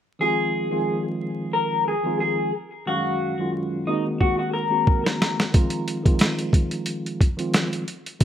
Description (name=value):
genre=hip hop, boom-bap hip-hop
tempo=90 BPM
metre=4/4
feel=swing 54% on 16ths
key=unclear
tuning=A4 = 440 Hz
part: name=electric guitar at the edge of break-up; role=melody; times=0.2-5.0 s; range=Eb4 to Bb4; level=-24 LUFS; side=left 2 dB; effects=phaser, high-pass filter, low-pass filter, ping-pong delay
part: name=mellow tine electric piano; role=accompaniment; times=0.2-8.2 s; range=Gb2 to F5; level=-26 LUFS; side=equal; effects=medium stereo tremolo, cassette tape, high-pass filter, low-pass filter
part: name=boom bap sampler-style drum kit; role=drums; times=4.2-8.2 s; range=hi-hat, kick drum, snare drum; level=-20 LUFS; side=equal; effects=none
room=light reverb, digital ambience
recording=rough home demo mix, vinyl crackle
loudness=-21 LUFS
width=side -10 dB against mid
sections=0.2-8.2 A section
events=drum fill 4.2-5.5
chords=0.2 Fm7; 2.9 Ebm11/Gb; 3.9 Ab9; 5.5 Fm7